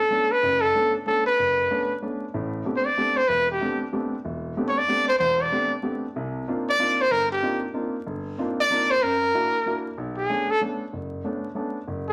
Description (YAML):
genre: jazz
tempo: 189 BPM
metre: 3/4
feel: swing 63% on 8ths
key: unclear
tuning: A4 = 436 Hz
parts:
  - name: clear trumpet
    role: melody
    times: 0.0-12.1 s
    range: G4 to D5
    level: -23 LUFS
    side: equal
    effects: none
  - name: warm concert grand piano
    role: accompaniment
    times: 0.1-12.1 s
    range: E1 to G4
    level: -31 LUFS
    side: equal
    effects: none
room: moderate studio reverb, RT60 0.9 s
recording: vinyl crackle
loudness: -24 LUFS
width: mono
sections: 0.0-2.3 A section; 2.3-10.0 B section; 10.0-12.1 C section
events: trumpet solo 10.0-12.1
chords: 0.0 Bm9; 2.3 Am11; 6.2 Cm11; 9.0 F#aug7; 10.0 Bm9